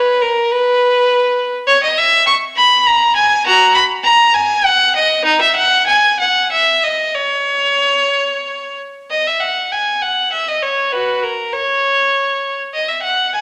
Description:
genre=classical, baroque-style suite movement for unaccompanied violin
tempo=90-104 BPM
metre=3/4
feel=rubato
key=B major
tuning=A4 = 441 Hz
part: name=clear violin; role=solo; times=0.0-13.4 s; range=D#4 to C#6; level=-14 LUFS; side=equal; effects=none
room=moderate recital hall reverb, RT60 1.5 s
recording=none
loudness=-14 LUFS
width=mono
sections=0.0-9.1 A section; 9.1-13.4 A section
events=none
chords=none

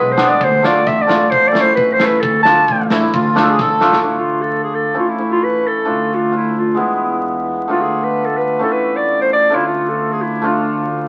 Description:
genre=klezmer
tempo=132 BPM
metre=2/4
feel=straight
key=D dorian sharp4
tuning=A4 = 443 Hz
part: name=breathy clarinet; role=melody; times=0.0-10.9 s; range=D4 to A5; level=-18 LUFS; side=equal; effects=none
part: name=hammered dulcimer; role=accompaniment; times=0.0-11.1 s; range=G#3 to F4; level=-20 LUFS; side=equal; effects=none
part: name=clear double bass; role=bass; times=0.0-11.1 s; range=A1 to E2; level=-27 LUFS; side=equal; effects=none
part: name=gated 80s drum kit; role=drums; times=0.2-4.0 s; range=kick drum, snare drum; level=-25 LUFS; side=equal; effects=none
part: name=accordion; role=second line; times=2.9-4.0 s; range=E4 to A4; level=-18 LUFS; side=equal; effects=light tremolo tuning
room=wet studio reverb, RT60 0.7 s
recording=very old 78 rpm record, vinyl crackle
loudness=-15 LUFS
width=mono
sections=0.0-4.0 A section; 4.0-11.1 B section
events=clarinet solo 0.0-4.0; drum fill 3.6-4.0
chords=0.4 Dm; 1.3 A; 2.2 Dm; 5.0 A; 5.9 Dm; 6.8 E; 7.7 Dm; 8.6 A; 9.5 Dm

